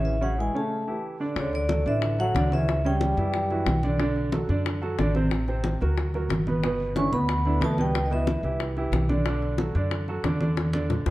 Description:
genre	Afro-Cuban jazz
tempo	182 BPM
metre	4/4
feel	straight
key	D major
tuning	A4 = 437 Hz
part	vibraphone with medium mallets	melody	0.0-3.8, 7.0-8.6 s	C#5 to C#6	-29 LUFS	equal	none
part	breathy trombone	second line	0.0-3.8, 7.0-8.6 s	C#3 to C#4	-32 LUFS	left 2 dB	none
part	warm upright piano	accompaniment	0.0-11.1 s	B2 to D5	-29 LUFS	right 2 dB	none
part	upright bass	bass	0.0-11.1 s	G1 to F#2	-27 LUFS	equal	none
part	bongos	percussion	1.4-11.1 s	none	-34 LUFS	left 6 dB	none
part	congas	percussion	1.4-11.0 s	none	-30 LUFS	equal	none
room	wet large studio reverb, RT60 1.4 s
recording	dark, warm production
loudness	-23 LUFS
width	side -17 dB against mid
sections	0.0-1.4 A section; 1.4-11.1 B section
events	break 0.0-1.4; drum fill 10.6-11.1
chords	0.0 Amaj7; 0.7 A7; 1.4 Dmaj7; 2.7 C#dim; 3.3 Em9; 4.0 Bm7; 5.3 Am; 6.0 Daug; 6.6 G6; 7.9 C#m7b5; 8.6 Cadd9; 9.3 Bm7; 10.6 E5

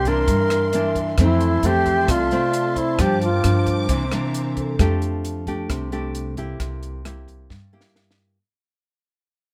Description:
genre	bossa nova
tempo	133 BPM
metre	4/4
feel	straight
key	F major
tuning	A4 = 440 Hz
part	alto flute	melody	0.0-3.9 s	E4 to Bb4	-23 LUFS	equal	none
part	nylon-string guitar	accompaniment	0.0-8.4 s	F2 to G4	-27 LUFS	equal	none
part	warm symphonic string section	sustained chords	0.0-4.8 s	A4 to D6	-35 LUFS	equal	none
part	upright bass	bass	0.0-8.4 s	C2 to G2	-26 LUFS	equal	none
part	compact cocktail drum kit	drums	0.1-8.2 s	hi-hat, kick drum, rim click, snare drum	-28 LUFS	equal	none
part	vibraphone with soft mallets	accompaniment	0.7-5.0 s	A4 to E5	-32 LUFS	equal	none
room	little or no reverb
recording	none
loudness	-21 LUFS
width	mono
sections	0.0-4.8 A section; 4.8-8.4 B section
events	fade-out 4.8-8.4; drum fill 7.5-8.4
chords	0.0 C9; 1.2 Fmaj7; 3.0 Gm7; 3.9 C9; 4.8 F69; 6.6 C7

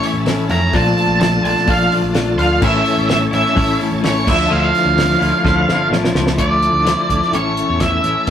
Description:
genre	psychedelic rock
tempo	127 BPM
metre	4/4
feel	straight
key	unclear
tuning	A4 = 440 Hz
part	octave-fuzz lead guitar	melody	0.0-8.3 s	C#5 to Bb5	-17 LUFS	right 2 dB	distortion
part	bright tonewheel organ	sustained chords	0.0-8.3 s	F3 to A5	-25 LUFS	right 2 dB	slow rotary speaker, chorus vibrato
part	twelve-string electric guitar	riff	0.0-8.3 s	A2 to F4	-18 LUFS	left 3 dB	tremolo
part	damped 70s drum kit	drums	0.0-8.3 s	crash cymbal, hi-hat, kick drum, snare drum	-21 LUFS	equal	none
part	fingered electric bass	bass	0.1-8.3 s	A1 to F2	-21 LUFS	right 1 dB	none
room	wet studio reverb, RT60 0.6 s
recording	rough rehearsal-room recording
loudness	-13 LUFS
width	side -9 dB against mid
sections	0.0-6.4 A section; 6.4-8.3 B section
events	drum fill 5.5-6.4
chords	0.0 A; 0.7 Bbmaj7; 2.6 A; 4.3 Dmadd9; 7.3 A

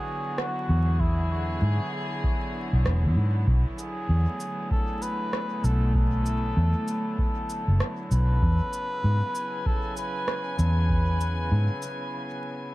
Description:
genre	ambient dub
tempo	97 BPM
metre	4/4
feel	swing 60% on 16ths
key	unclear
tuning	A4 = 440 Hz
part	trumpet with cup mute	melody	0.0-12.1 s	E4 to B4	-33 LUFS	equal	dub echo
part	rich chamber string section	sustained chords	0.0-12.7 s	C#3 to G#5	-33 LUFS	equal	none
part	electronic rim click and shaker	drums	0.4-12.0 s	none	-33 LUFS	right 2 dB	none
part	vintage muted fingered electric bass	bass	0.7-11.7 s	E1 to G#2	-22 LUFS	equal	none
part	electronic kick drum	drums	1.0-11.0 s	none	-27 LUFS	equal	none
room	light reverb, digital ambience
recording	echo-heavy mix, vinyl crackle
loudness	-23 LUFS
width	side -18 dB against mid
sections	0.0-12.7 A section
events	break 12.1-12.7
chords	0.0 E7; 3.5 Bm7; 8.4 E

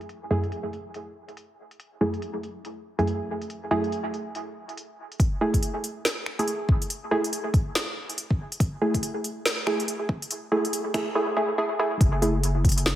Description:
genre	deep dubstep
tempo	141 BPM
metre	4/4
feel	swing 60% on 16ths, half-time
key	unclear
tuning	A4 = 440 Hz
part	deep house drum kit	drums	0.0-13.0 s	finger snaps, hi-hat, snare drum	-28 LUFS	equal	high-pass filter on snare, low-pass filter on snare, high-pass filter on hats, low-pass filter on hats, high-pass filter on cymbals, low-pass filter on cymbals
part	filtered dub chord stab	stabs	0.3-12.4 s	F#2 to G#4	-27 LUFS	right 1 dB	chorus, dub echo
part	electronic kick drum	drums	5.2-12.7 s	none	-22 LUFS	equal	none
part	saturated sub bass	bass	12.0-13.0 s	F#1	-25 LUFS	equal	none
room	moderate echo chamber reverb, RT60 1.5 s, digital ambience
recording	heavily compressed radio sound, high-pass filter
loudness	-24 LUFS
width	side -12 dB against mid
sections	0.0-5.2 A section; 5.2-12.0 B section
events	build-up 5.2-12.0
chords	0.0 F#m7; 5.2 Eadd11/A; 12.0 F#m7

